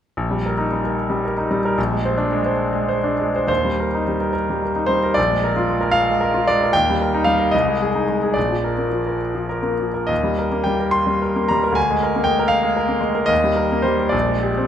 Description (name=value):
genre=classical, romantic character piece for solo piano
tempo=61-81 BPM (dotted quarters)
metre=6/8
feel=rubato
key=Eb major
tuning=A4 = 439 Hz
part: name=bright concert grand piano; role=solo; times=0.2-14.7 s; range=Bb1 to C6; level=-17 LUFS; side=equal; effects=none
room=moderate scoring stage reverb, RT60 2.0 s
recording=none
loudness=-17 LUFS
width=side -9 dB against mid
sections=0.2-3.5 A section; 3.5-14.7 B section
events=none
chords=0.2 Eb/Bb; 1.8 Bb9; 3.5 Eb; 5.2 Bb7; 6.7 Eb; 7.5 Ab/C; 8.4 Bb; 10.1 Eb; 11.8 Bb7/D; 13.3 Eb; 14.1 Bb13